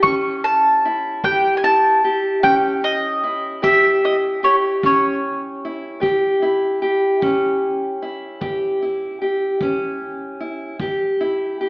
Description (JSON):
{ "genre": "acoustic country blues, solo or duo", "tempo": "50 BPM (dotted quarters)", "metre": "12/8", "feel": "straight", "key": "A mixolydian", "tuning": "A4 = 439 Hz", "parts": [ { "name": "mandolin", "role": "melody", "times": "0.0-5.7 s", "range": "C#5 to C#6", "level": "-16 LUFS", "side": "equal", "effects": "none" }, { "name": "fingerpicked steel-string acoustic guitar", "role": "accompaniment", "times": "0.0-11.7 s", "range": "A2 to G4", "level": "-19 LUFS", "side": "equal", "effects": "none" }, { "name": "kick drum", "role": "drums", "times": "0.0-11.0 s", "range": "none", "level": "-31 LUFS", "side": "equal", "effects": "none" } ], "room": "wet concert hall reverb, RT60 2.0 s", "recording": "recorded in a church or concert hall, AM radio sound", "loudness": "-16 LUFS", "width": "side -24 dB against mid", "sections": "0.0-11.7 A section", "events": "none", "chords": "0.0 A7", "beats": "0.03 | 1.23 2.43 3.63 4.83 | 6.03 7.22 8.42 9.61 | 10.80" }